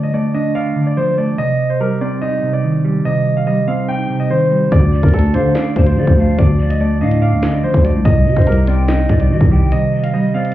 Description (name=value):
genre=hip hop, drill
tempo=144 BPM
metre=4/4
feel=half-time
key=unclear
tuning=A4 = 437 Hz
part: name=clear concert grand piano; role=melody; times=0.0-10.5 s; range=A4 to G5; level=-20 LUFS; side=left 1 dB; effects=low-pass filter
part: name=mellow electric guitar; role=accompaniment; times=0.0-10.5 s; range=C3 to D5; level=-16 LUFS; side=right 2 dB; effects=low-pass filter
part: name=growling 808-style bass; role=bass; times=4.7-9.7 s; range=C2 to D3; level=-15 LUFS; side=equal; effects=none
part: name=drill drum kit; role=drums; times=4.7-10.5 s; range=hi-hat, kick drum, snare drum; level=-15 LUFS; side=equal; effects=vintage 12-bit sampler grit
part: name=breathy large pan pipes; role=second line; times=4.9-10.5 s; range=C5 to G5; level=-26 LUFS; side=left 2 dB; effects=ping-pong delay
room=light reverb, digital ambience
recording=heard muffled through a wall, club reverb, EQ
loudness=-12 LUFS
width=side -14 dB against mid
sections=0.0-10.5 A section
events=break 9.7-10.5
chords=0.0 Dm; 1.4 Cm; 4.7 Dm; 8.1 Cm